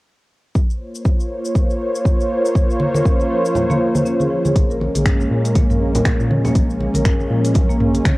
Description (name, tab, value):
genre	afro house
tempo	120 BPM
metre	4/4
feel	swing 58% on 16ths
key	Bb minor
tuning	A4 = 436 Hz
part	warm analog pad	sustained chords	0.9-8.2 s	Ab3 to Db5	-20 LUFS	equal	chorus, sidechain pumping
part	afro-pop drum kit	drums	0.6-8.2 s	finger snaps, hi-hat, shaker, toms	-26 LUFS	equal	none
part	electronic kick drum	drums	0.6-8.2 s	none	-16 LUFS	equal	none
part	congas	percussion	2.8-8.2 s	none	-22 LUFS	equal	none
part	marimba with soft mallets	arpeggios	2.9-8.2 s	F3 to Bb4	-23 LUFS	left 1 dB	sidechain pumping, tape echo
part	round analog bass	bass	4.6-8.0 s	Bb1 to Bb2	-21 LUFS	equal	sidechain pumping
room	light reverb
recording	home recording on cassette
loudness	-15 LUFS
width	side -20 dB against mid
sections	0.6-4.6 A section; 4.6-8.2 B section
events	kick drops out 3.6-4.6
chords	0.6 Bbmadd9; 4.6 Bbm7